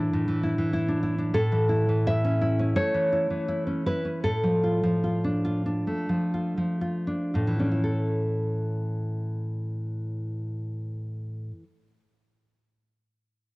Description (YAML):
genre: romantic piece for solo classical guitar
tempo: 56-100 BPM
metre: 4/4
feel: rubato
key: A major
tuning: A4 = 439 Hz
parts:
  - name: nylon-string guitar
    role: solo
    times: 0.0-12.0 s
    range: A2 to E5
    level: -24 LUFS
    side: equal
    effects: cassette tape
room: light reverb, small room ambience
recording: home recording on cassette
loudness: -24 LUFS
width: side -24 dB against mid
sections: 0.0-7.8 A section; 7.8-11.7 B section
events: slowing down 0.1-7.8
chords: 0.0 E7/A; 1.4 A; 4.2 Dm/A; 7.8 A